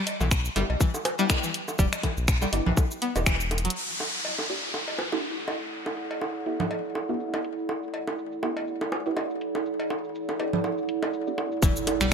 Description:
minimal techno; 122 BPM; 4/4; swing 56% on 16ths; E minor; A4 = 436 Hz
garage drum kit; drums; 0.1-12.1 s; cabasa, finger snaps, hi-hat; -30 LUFS; left 1 dB; low-pass filter on snare, low-pass filter on perc, low-pass filter on hats
cowbell, bongos and congas; percussion; 0.1-12.0 s; -32 LUFS; right 1 dB
string-like resonator pluck; riff; 0.2-3.7, 11.6-12.1 s; E3 to B3; -30 LUFS; left 2 dB; chorus, phaser, sidechain pumping, ping-pong delay
round analog bass; bass; 0.2-3.7, 11.6-12.1 s; E1 to B1; -28 LUFS; left 1 dB; sidechain pumping
electronic kick drum; drums; 0.3-3.4, 11.6-11.7 s; -23 LUFS; left 1 dB
filtered dub chord stab; stabs; 0.6-11.3 s; B3 to G4; -34 LUFS; right 1 dB; phaser, ensemble chorus, ping-pong delay
downlifter and impact; sound effects; 3.8-7.7, 11.7-12.1 s; -32 LUFS; left 1 dB
warbly tape-like pad; texture; 4.4-12.1 s; E4 to F#5; -31 LUFS; right 3 dB; chorus, built-in reverb, sidechain pumping
moderate lush hall reverb, RT60 1.5 s, digital ambience; bright 1980s-style digital production; -25 LUFS; side -6 dB against mid
0.0-3.8 A section; 3.8-11.6 B section
drum fill 3.5; impact 11.6-12.1
0.0 Em; 3.8 E7(no3)

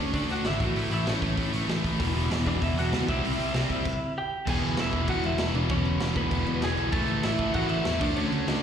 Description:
punk rock; 195 BPM; 4/4; straight; A4 = 440 Hz
lightly driven lead guitar; melody; 0.0-8.5 s; B3 to A5; -32 LUFS; right 2 dB
biting overdriven guitar; riff; 0.0-8.6 s; E2 to D4; -33 LUFS; right 13 dB
distorted electric guitar; riff; 0.0-8.6 s; E2 to D4; -32 LUFS; left 12 dB; distortion, slapback echo
picked electric bass; bass; 0.0-8.6 s; E1 to E2; -30 LUFS; equal
raw garage drum kit; drums; 0.1-8.5 s; crash cymbal, hi-hat, kick drum, snare drum; -32 LUFS; equal
crunchy overdriven guitar; riff; 2.0-8.6 s; E2 to D4; -33 LUFS; equal
light reverb; live gig heard through the venue's PA, recital hall reverb; -24 LUFS; side -8 dB against mid
0.0-4.5 A section; 4.5-8.6 B section
stop 3.9-4.5
0.0 D; 0.6 A; 2.0 E5; 3.1 C; 4.5 E; 6.9 A5; 8.0 D5

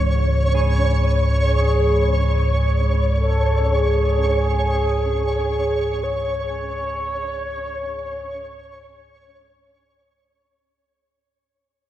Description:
dark ambient drone; free time; A4 = 440 Hz
carillon bells; arpeggios; 0.0-7.5 s; C#3 to G#5; -34 LUFS; right 3 dB; tape echo
deep rumbling drone; drone; 0.0-10.8 s; C#2 to G#2; -20 LUFS; equal; built-in reverb, wide subtle chorus
flickering grainy texture; texture; 0.0-10.7 s; C#5; -24 LUFS; equal; built-in reverb
mellow horn-like synth lead; melody; 1.4-10.1 s; G#4 to C#5; -24 LUFS; equal; chorus
moderate huge ambient reverb, RT60 8.0 s; -18 LUFS; side -12 dB against mid
0.0-10.7 A section
fade-in on church bells 0.0-10.7; fade-out 4.5-10.7
0.0 C#5

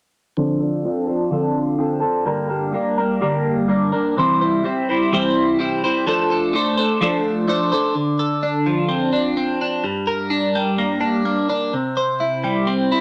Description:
rock; 127 BPM; 4/4; straight; A4 = 441 Hz
twelve-string electric guitar; solo; 0.4-13.0 s; G2 to C5; -20 LUFS; equal; phaser, low-pass filter
moderate large studio reverb, RT60 0.9 s; -20 LUFS; mono
0.4-7.9 A section; 7.9-13.0 B section
filter sweep on clean electric guitar 0.4-7.9
0.4 Dm7; 2.3 Gm; 4.2 C; 6.1 F6; 7.9 Dm7; 9.8 Gm; 11.7 C

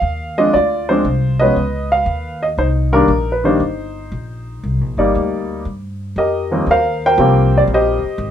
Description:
jazz piano trio; 117 BPM; 4/4; swing 68% on 8ths; C minor; A4 = 440 Hz
warm upright piano; melody; 0.0-8.3 s; Eb2 to G5; -15 LUFS; equal
upright bass; bass; 0.0-8.3 s; G1 to G2; -20 LUFS; equal
moderate club reverb, RT60 0.6 s; minimal, uncompressed stereo recording; -13 LUFS; side -9 dB against mid
0.0-6.7 A section; 6.7-8.3 B section
0.0 Ab; 0.5 Dm7b5; 1.6 Db9; 2.6 Cm9; 6.7 Eb6

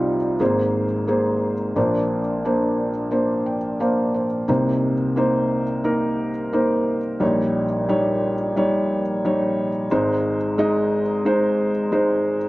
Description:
folk; 89 BPM; 4/4; straight; A4 = 441 Hz
felt-muted upright piano; solo; 0.0-12.5 s; Ab1 to G5; -19 LUFS; equal
light reverb; worn, warbling old tape, cassette tape, warbly pitch drift; -19 LUFS; side -18 dB against mid
0.0-4.5 A section; 4.5-12.5 B section
0.4 Abadd9; 1.8 Bbadd9; 4.5 Cm7; 7.2 Eb7/Bb; 9.9 Ab

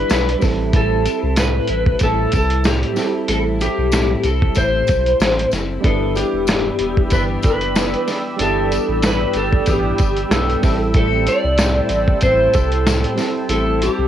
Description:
indie pop, bedroom pop; 94 BPM; 4/4; swing 55% on 16ths; A4 = 440 Hz
clean lap steel guitar; melody; 0.0-14.1 s; G4 to D5; -19 LUFS; left 1 dB; lush chorus, tape echo
clean electric guitar; accompaniment; 0.0-14.1 s; G2 to B4; -25 LUFS; left 6 dB; ensemble chorus, vibrato effect, cassette tape
soft electric-piano-like synth keys; accompaniment; 0.0-14.1 s; G3 to D5; -25 LUFS; right 7 dB; chorus, cassette tape
warm sub bass; bass; 0.0-14.1 s; E1 to C2; -22 LUFS; equal
lo-fi sampler-style drum kit; drums; 0.1-14.0 s; hi-hat, kick drum, snare drum; -19 LUFS; equal; cassette tape
tambourine; percussion; 0.1-14.0 s; -35 LUFS; left 9 dB
warbly tape-like pad; sustained chords; 6.4-14.1 s; C5 to E6; -27 LUFS; right 1 dB; chorus, built-in reverb, cassette tape
light reverb; home recording on cassette; -15 LUFS; side -10 dB against mid
0.0-14.1 A section
0.4 Am7; 5.8 G6; 10.6 Am7

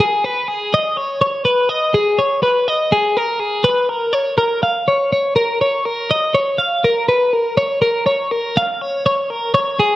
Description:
rock; 122 BPM; 4/4; straight; A4 = 440 Hz
twelve-string electric guitar; solo; 0.0-10.0 s; G#4 to E#5; -14 LUFS; equal; spring reverb
digital ambience; dry, close 1970s-style studio recording; -15 LUFS; side -15 dB against mid
0.0-9.8 A section

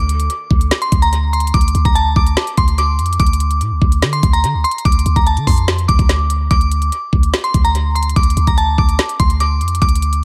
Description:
hip hop, trap; 145 BPM; 4/4; half-time; D minor; A4 = 439 Hz
glassy synth bell; melody; 0.0-10.2 s; A5 to D6; -21 LUFS; equal; chorus, tape echo
clean 808-style bass; bass; 0.0-10.2 s; D2 to D3; -18 LUFS; equal
trap drum kit; drums; 0.1-10.2 s; hi-hat, kick drum, snare drum; -18 LUFS; equal
little or no reverb; echo-heavy mix; -15 LUFS; mono
0.0-10.2 A section

